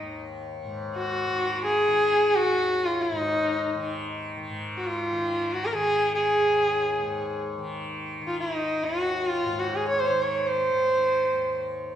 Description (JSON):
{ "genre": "indian classical, Hindustani", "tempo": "free time", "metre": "none", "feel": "none", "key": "Eb raga bageshri", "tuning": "A4 = 441 Hz", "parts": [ { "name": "warm sarangi", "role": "melody", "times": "0.0-11.6 s", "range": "Eb4 to Db5", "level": "-23 LUFS", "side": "equal", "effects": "none" }, { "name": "tanpura", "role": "drone", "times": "0.0-12.0 s", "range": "Eb2 to Eb3", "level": "-33 LUFS", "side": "left 2 dB", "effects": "none" } ], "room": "wet recital hall reverb, RT60 1.2 s", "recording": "recorded in a church or concert hall", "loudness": "-23 LUFS", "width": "side -10 dB against mid", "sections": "0.0-4.5 A section; 4.5-12.0 A section", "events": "none", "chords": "none" }